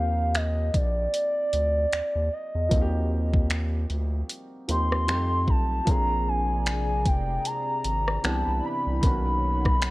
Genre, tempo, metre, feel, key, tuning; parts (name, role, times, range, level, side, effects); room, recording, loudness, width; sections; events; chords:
contemporary R&B; 76 BPM; 4/4; swing 58% on 16ths; Eb major; A4 = 441 Hz
hollow clarinet-like synth lead; melody; 0.0-9.9 s; D5 to C6; -27 LUFS; equal; chorus, tape echo
warm grand piano; accompaniment; 0.0-9.9 s; D#3 to Ab4; -34 LUFS; right 1 dB
round analog bass; bass; 0.0-9.9 s; F1 to F2; -26 LUFS; equal
smooth R&B drum kit; drums; 0.3-9.9 s; finger snaps, hi-hat, kick drum, rim click; -25 LUFS; equal
chorused pulse-width pad; sustained chords; 5.9-9.9 s; B2 to B5; -35 LUFS; left 1 dB
little or no reverb; worn, warbling old tape, cassette tape, warbly pitch drift; -23 LUFS; side -20 dB against mid
0.0-9.9 A section
0.0 Eb6; 5.1 F9; 5.9 Bb9; 8.2 Cmaj9; 9.0 Bmaj9